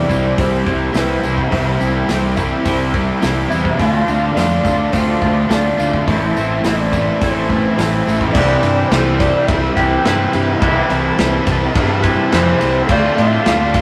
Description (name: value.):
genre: rock, shoegaze and dream pop.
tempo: 106 BPM.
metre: 4/4.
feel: straight.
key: unclear.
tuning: A4 = 438 Hz.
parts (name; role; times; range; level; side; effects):
soft octave-layered synth lead; melody; 0.0-13.8 s; B4 to G5; -24 LUFS; equal; chorus.
warm analog pad; sustained chords; 0.0-13.8 s; C4 to C6; -27 LUFS; equal; chorus.
overdriven electric guitar; riff; 0.0-13.8 s; A2 to F4; -22 LUFS; equal; none.
overdriven semi-hollow guitar; riff; 0.0-8.3 s; A2 to D4; -24 LUFS; equal; none.
twangy electric guitar; riff; 0.0-13.8 s; A2 to C5; -24 LUFS; equal; none.
fuzz fingered electric bass; bass; 0.0-13.8 s; A1 to A2; -22 LUFS; equal; overdrive.
loose indie drum kit; drums; 0.1-13.8 s; crash cymbal, hi-hat, kick drum, ride cymbal, snare drum; -23 LUFS; equal; none.
tambourine; percussion; 0.1-8.2 s; none; -42 LUFS; equal; none.
room: wet stone room reverb, RT60 1.3 s.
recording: rough rehearsal-room recording, lossy compression artefacts.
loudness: -15 LUFS.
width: mono.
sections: 0.0-8.3 A section; 8.3-13.8 B section.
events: none.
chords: 0.0 Cmaj7; 3.8 Dm7; 6.1 Am; 8.3 Cmaj7; 12.9 Dm7.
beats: 0.37 0.94 | 1.51 2.08 2.65 3.22 | 3.79 4.36 4.93 5.50 | 6.07 6.64 7.21 7.78 | 8.35 8.91 9.48 10.05 | 10.62 11.19 11.75 12.32 | 12.89 13.46.